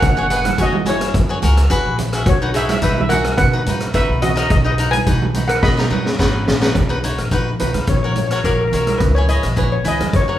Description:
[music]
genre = calypso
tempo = 107 BPM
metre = 4/4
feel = straight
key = B major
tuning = A4 = 440 Hz
[part]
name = steel pan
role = melody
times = 0.0-10.4 s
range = E4 to B5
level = -20 LUFS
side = left 1 dB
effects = none
[part]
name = cavaquinho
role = accompaniment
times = 0.0-10.4 s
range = D#4 to E5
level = -23 LUFS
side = left 2 dB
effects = none
[part]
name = upright bass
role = bass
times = 0.0-10.4 s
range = F#1 to B2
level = -20 LUFS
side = equal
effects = none
[part]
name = street-band drum kit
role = drums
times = 0.0-10.3 s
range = hi-hat, kick drum, rim click, snare drum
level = -19 LUFS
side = equal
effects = none
[part]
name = congas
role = percussion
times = 0.4-10.1 s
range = none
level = -25 LUFS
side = right 4 dB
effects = none
[sound]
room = moderate large studio reverb, RT60 1.2 s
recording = band playing live in one room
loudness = -14 LUFS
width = side -12 dB against mid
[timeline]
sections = 0.0-6.8 A section; 6.8-10.4 B section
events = drum fill 5.6-6.8; steel pan solo 6.8-10.4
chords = 0.0 F#sus2; 2.3 B; 6.8 Bmaj7; 7.9 F#/A#; 9.0 C#m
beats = | 0.02 0.58 1.14 1.70 | 2.26 2.82 3.39 3.95 | 4.51 5.07 5.63 6.19 | 6.76 7.32 7.88 8.45 | 9.01 9.57 10.14

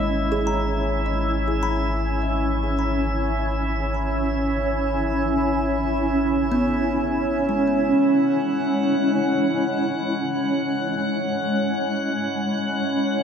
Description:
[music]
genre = ambient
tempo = free time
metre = none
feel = none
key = unclear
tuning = A4 = 441 Hz
[part]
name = granular cloud pad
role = sustained chords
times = 0.0-13.2 s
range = G#3 to C#5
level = -22 LUFS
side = equal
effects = built-in reverb
[part]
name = kalimba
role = arpeggios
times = 0.0-10.7 s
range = G#3 to B5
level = -29 LUFS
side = left 1 dB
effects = ping-pong delay
[part]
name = warm sub bass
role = bass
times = 0.0-7.9 s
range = G#1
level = -27 LUFS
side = equal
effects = none
[part]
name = drifting glass-harmonics texture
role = texture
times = 0.0-13.2 s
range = E4 to F#6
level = -29 LUFS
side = equal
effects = chorus, built-in reverb
[sound]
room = wet plate reverb, RT60 3.0 s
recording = dreamy mix soaked in reverb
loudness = -20 LUFS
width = side -7 dB against mid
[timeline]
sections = 0.0-8.0 A section; 8.0-13.2 B section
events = none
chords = 0.0 C#m7/G#; 8.0 C#m/G#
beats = free time

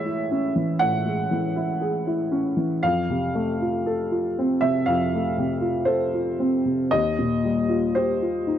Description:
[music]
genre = neoclassical minimalist piano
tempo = 59 BPM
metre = 4/4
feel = rubato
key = unclear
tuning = A4 = 441 Hz
[part]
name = warm upright piano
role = solo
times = 0.0-8.6 s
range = D#2 to F#5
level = -21 LUFS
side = equal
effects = none
[sound]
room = studio reverb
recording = dry, close 1970s-style studio recording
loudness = -21 LUFS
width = side -10 dB against mid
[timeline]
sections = 0.0-8.6 A section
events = none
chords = 0.0 Amaj7; 2.8 F; 6.9 D#add9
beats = 0.81 1.83 | 2.84 3.84 4.85 5.88 | 6.91 7.94

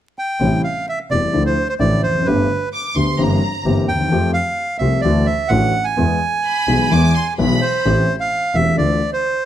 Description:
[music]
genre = tango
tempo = 129 BPM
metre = 4/4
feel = rubato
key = A minor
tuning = A4 = 440 Hz
[part]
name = bandoneon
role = melody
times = 0.2-9.5 s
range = B4 to G#5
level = -19 LUFS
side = right 3 dB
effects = none
[part]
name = warm grand piano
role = accompaniment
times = 0.4-9.0 s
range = E1 to G#4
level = -18 LUFS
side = left 2 dB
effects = none
[part]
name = clear double bass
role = bass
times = 0.4-9.0 s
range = E1 to F2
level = -20 LUFS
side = equal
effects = none
[part]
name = rich studio violin section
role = second line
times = 2.7-7.8 s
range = Bb5 to D6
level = -24 LUFS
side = left 1 dB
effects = none
[sound]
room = light reverb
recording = close, detailed microphones, vinyl crackle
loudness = -15 LUFS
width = side -11 dB against mid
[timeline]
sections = 0.4-7.9 A section; 7.9-9.5 B section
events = none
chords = 0.4 Am7; 1.3 Dmadd9; 2.3 Gadd9; 3.2 C7/G; 4.1 Fadd9; 5.0 Dadd9; 6.0 E; 7.9 Am7; 8.8 Dmadd9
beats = | 0.41 0.88 1.35 1.81 | 2.27 2.73 3.19 3.65 | 4.11 4.58 5.04 5.51 | 5.97 6.44 6.91 7.38 | 7.86 8.32 8.79 9.25

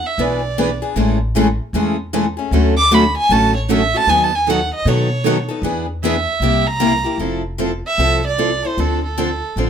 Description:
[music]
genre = acoustic string swing (jazz manouche)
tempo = 154 BPM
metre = 4/4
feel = swing 63% on 8ths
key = A major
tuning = A4 = 439 Hz
[part]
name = warm violin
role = melody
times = 0.0-9.7 s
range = A4 to D6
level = -18 LUFS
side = right 2 dB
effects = none
[part]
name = picked steel-string acoustic guitar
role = accompaniment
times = 0.2-9.7 s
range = C3 to A4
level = -20 LUFS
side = left 6 dB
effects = none
[part]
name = picked steel-string acoustic guitar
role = accompaniment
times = 0.2-9.7 s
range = C3 to B4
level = -21 LUFS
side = right 6 dB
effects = none
[part]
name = upright bass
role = bass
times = 0.2-9.7 s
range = F1 to B2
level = -21 LUFS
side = equal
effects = none
[sound]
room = moderate small room reverb, RT60 0.5 s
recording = minimal, uncompressed stereo recording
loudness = -14 LUFS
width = side -8 dB against mid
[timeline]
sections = 0.0-7.2 A section; 7.2-9.7 B section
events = violin solo 0.0-7.2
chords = 0.0 E7; 1.0 Amaj7; 2.5 Dmaj7; 4.1 B7/D#; 5.6 E7; 6.4 C7; 7.2 Fmaj7; 8.8 Dm7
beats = 0.18 0.57 | 0.96 1.35 1.74 2.13 | 2.52 2.91 3.30 3.69 | 4.08 4.47 4.86 5.25 | 5.64 6.03 6.42 6.81 | 7.20 7.59 7.99 8.38 | 8.77 9.16 9.55

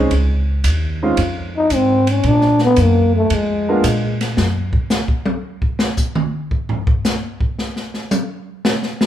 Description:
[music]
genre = jazz, small-group swing and bop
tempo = 112 BPM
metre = 4/4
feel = swing 69% on 8ths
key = Bb minor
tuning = A4 = 440 Hz
[part]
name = dark upright piano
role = accompaniment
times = 0.0-3.8 s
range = Ab3 to Ab4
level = -19 LUFS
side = right 1 dB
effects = none
[part]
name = upright bass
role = bass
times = 0.0-4.7 s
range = Db2 to Bb2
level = -18 LUFS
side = equal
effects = none
[part]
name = open jazz drum kit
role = drums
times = 0.1-9.1 s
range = hi-hat, kick drum, ride cymbal, snare drum, toms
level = -20 LUFS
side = equal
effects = none
[part]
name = growling trombone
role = melody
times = 1.6-4.3 s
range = Ab3 to Eb4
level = -15 LUFS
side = left 1 dB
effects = none
[sound]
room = moderate large studio reverb, RT60 1.2 s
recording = band playing live in one room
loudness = -15 LUFS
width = side -11 dB against mid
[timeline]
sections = 0.0-9.1 A section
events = trombone solo 0.0-9.1; drum solo 4.4-9.1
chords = 0.1 Db; 2.2 Bb7(no3); 4.4 N.C.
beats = | 0.12 0.65 1.18 1.71 | 2.24 2.77 3.31 3.84 | 4.38 4.91 5.44 5.98 | 6.51 7.05 7.58 8.12 | 8.65

